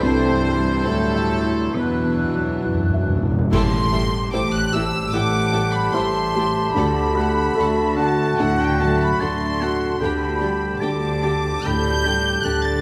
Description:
cinematic, emotional film score for orchestra; 67-78 BPM; 4/4; rubato; A dorian; A4 = 440 Hz
warm studio violin section; melody; 0.0-12.8 s; D4 to A6; -28 LUFS; equal
clear studio violin section; second line; 0.0-12.5 s; G4 to G5; -35 LUFS; equal
hollow flute section; second line; 0.0-12.8 s; A5 to G6; -32 LUFS; equal
warm clarinet; second line; 0.0-12.8 s; E4 to G4; -30 LUFS; equal
warm oboe; second line; 0.0-12.8 s; D5 to E6; -32 LUFS; equal
dark studio viola section; accompaniment; 0.0-12.5 s; E3 to E4; -32 LUFS; equal
felt-muted upright piano; accompaniment; 0.0-12.8 s; C2 to E5; -28 LUFS; equal
dark French horn section; sustained chords; 0.0-12.8 s; G3 to A4; -32 LUFS; equal
dark studio double bass section; bass; 0.0-12.8 s; A1 to F#2; -28 LUFS; equal
warm studio cello section; bass; 0.0-12.8 s; A2 to D3; -30 LUFS; equal
timpani; percussion; 1.7-3.5 s; E2; -28 LUFS; equal
clash cymbals and concert bass drum; percussion; 3.5-5.1 s; -30 LUFS; equal
moderate scoring stage reverb, RT60 1.6 s; -20 LUFS; mono
0.0-3.5 A section; 3.5-12.8 B section
timpani fill 1.8-3.5; band accent 3.5-4.3
0.0 C; 1.8 Esus2; 3.5 Am7; 6.8 D; 10.0 Gadd9/D

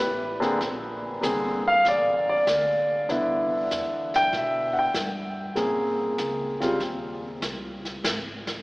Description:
jazz piano trio; 97 BPM; 4/4; swing 69% on 8ths; A4 = 440 Hz
warm grand piano; melody; 0.0-6.8 s; Db3 to G5; -23 LUFS; equal
upright bass; bass; 0.0-8.5 s; Ab1 to B2; -39 LUFS; equal
jazz brush drum kit; drums; 0.4-8.6 s; brushed snare drum, hi-hat, kick drum, snare drum; -33 LUFS; equal
wet cathedral reverb, RT60 5.3 s; recorded in a church or concert hall, AM radio sound; -23 LUFS; side -24 dB against mid
0.0-8.6 A section
grand piano solo 0.0-8.6
0.0 Gadd9 (rootless); 0.6 Bbadd9; 3.1 Cmaj9; 5.6 Bbm9; 6.8 Cm; 8.1 N.C.

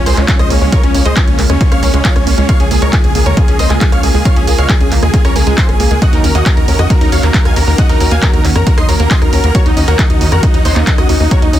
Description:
uplifting trance; 136 BPM; 4/4; straight; A4 = 441 Hz
big supersaw lead; melody; 0.0-11.6 s; Db4 to C6; -18 LUFS; equal; sidechain pumping, digital delay
analog pluck; second line; 0.0-11.6 s; Db4 to C6; -24 LUFS; left 1 dB
analog string pad; sustained chords; 0.0-11.6 s; Db3 to Gb4; -20 LUFS; equal; ensemble chorus, sidechain pumping
tight sequencer bass; bass; 0.0-11.6 s; Ab1 to F2; -14 LUFS; equal; sidechain pumping
analog pluck; arpeggios; 0.1-11.6 s; Ab3 to Db5; -21 LUFS; right 2 dB; chorus, sidechain pumping, digital delay
punchy analog drum machine; drums; 0.1-11.6 s; handclaps, hi-hat, rim click; -20 LUFS; right 1 dB
electronic kick drum; drums; 0.3-11.4 s; -12 LUFS; equal; overdrive
little or no reverb; dense, heavily limited modern master; -8 LUFS; side -12 dB against mid
0.0-11.6 A section
0.0 Db6; 6.0 Ebm7

